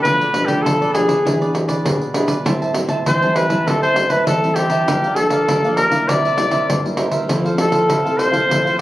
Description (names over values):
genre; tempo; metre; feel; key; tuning
samba and choro; 99 BPM; 4/4; straight; unclear; A4 = 436 Hz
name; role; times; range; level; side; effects
clear trumpet; melody; 0.0-8.8 s; G4 to D5; -17 LUFS; left 1 dB; none
cavaquinho; accompaniment; 0.0-8.8 s; E4 to A5; -24 LUFS; right 2 dB; none
nylon-string guitar; accompaniment; 0.0-8.8 s; G2 to A4; -21 LUFS; left 1 dB; none
pandeiro; percussion; 0.1-8.8 s; none; -21 LUFS; right 1 dB; none
room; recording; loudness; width
moderate studio reverb, RT60 0.7 s; recorded on a phone in the room, club reverb; -14 LUFS; side -15 dB against mid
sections
0.0-8.8 A section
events
none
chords
0.0 Bm7b5; 1.3 E7; 2.5 Am7; 4.9 Gm7; 6.1 C7; 7.3 Fmaj7